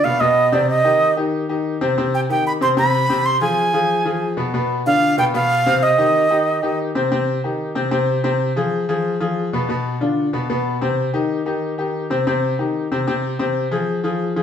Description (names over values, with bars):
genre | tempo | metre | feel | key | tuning
latin | 186 BPM | 4/4 | straight | C harmonic minor | A4 = 440 Hz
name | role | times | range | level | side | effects
breathy bright concert flute | melody | 0.0-6.8 s | D5 to C6 | -16 LUFS | right 3 dB | none
bright grand piano | accompaniment | 0.0-14.4 s | B2 to C5 | -19 LUFS | left 2 dB | none
room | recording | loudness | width
wet studio reverb, RT60 0.8 s | heard from further back in the room | -16 LUFS | side -8 dB against mid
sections
0.0-7.1 A section; 7.1-14.4 A section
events
none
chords
0.0 Bdim; 0.7 Cm; 3.3 Fm; 4.5 Bdim; 5.8 Cm; 8.4 Fm; 9.7 Bdim; 11.0 Cm; 13.6 Fm